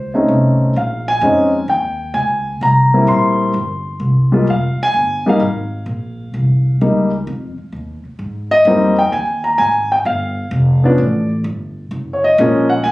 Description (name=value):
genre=jazz piano trio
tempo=129 BPM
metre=4/4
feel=swing 68% on 8ths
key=F minor, Ab major from 8.2 s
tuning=A4 = 440 Hz
part: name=warm concert grand piano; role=melody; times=0.0-12.9 s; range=F3 to C6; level=-14 LUFS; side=left 1 dB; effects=none
part: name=upright bass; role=bass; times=0.0-12.9 s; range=F1 to Ab2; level=-18 LUFS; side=equal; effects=none
room=light reverb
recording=recorded on a phone in the room, club reverb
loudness=-13 LUFS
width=side -18 dB against mid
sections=0.0-8.2 A section; 8.2-12.9 B section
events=none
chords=0.0 F7b13 (rootless); 0.8 Bbm11; 2.6 C7; 4.5 Fm11; 8.2 Abmaj7sus2; 10.1 G7(no3); 11.9 Gbmaj9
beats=0.29 | 0.76 1.22 1.69 2.15 | 2.62 3.08 3.55 4.01 | 4.48 4.95 5.41 5.88 | 6.34 6.81 7.27 7.74 | 8.20 8.67 9.13 9.60 | 10.07 10.53 11.00 11.46 | 11.93 12.39 12.86